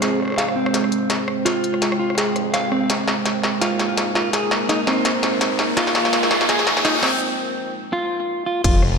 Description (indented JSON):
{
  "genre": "half-time drum and bass",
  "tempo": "167 BPM",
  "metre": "4/4",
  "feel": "swing 56% on 16ths, half-time",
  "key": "unclear",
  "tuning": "A4 = 440 Hz",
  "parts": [
    { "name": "deep dark ambient pad", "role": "sustained chords", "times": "0.0-9.0 s", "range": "Ab3 to G5", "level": "-24 LUFS", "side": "right 2 dB", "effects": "chorus, built-in reverb, vintage 12-bit sampler grit, sidechain pumping" },
    { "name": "semi-hollow electric guitar", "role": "arpeggios", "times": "0.0-8.8 s", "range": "C4 to F5", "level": "-22 LUFS", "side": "right 1 dB", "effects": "low-pass filter, digital delay" },
    { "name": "phased detuned saw bass", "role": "bass", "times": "0.0-9.0 s", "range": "Eb1 to Db2", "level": "-29 LUFS", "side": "left 1 dB", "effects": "none" },
    { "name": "industrial drum kit", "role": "drums", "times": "0.0-8.9 s", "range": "crash cymbal, hi-hat, rim click, snare drum", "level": "-21 LUFS", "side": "left 1 dB", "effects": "high-pass filter on hats, studio reverb, high-pass filter on snare, high-pass filter on cymbals" },
    { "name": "riser", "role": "sound effects", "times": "4.8-7.2 s", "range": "none", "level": "-28 LUFS", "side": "equal", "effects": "none" },
    { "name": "electronic kick drum", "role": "drums", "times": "8.6-8.7 s", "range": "none", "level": "-18 LUFS", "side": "left 1 dB", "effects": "studio reverb" }
  ],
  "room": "wet lush hall reverb, RT60 2.1 s",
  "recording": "none",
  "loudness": "-17 LUFS",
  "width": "side -5 dB against mid",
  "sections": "0.0-8.6 A section",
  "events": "build-up 0.0-8.6; drum fill 0.0-7.2; riser 4.8-7.2; break 7.2-8.6",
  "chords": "0.0 Fm; 2.9 Ebsus4"
}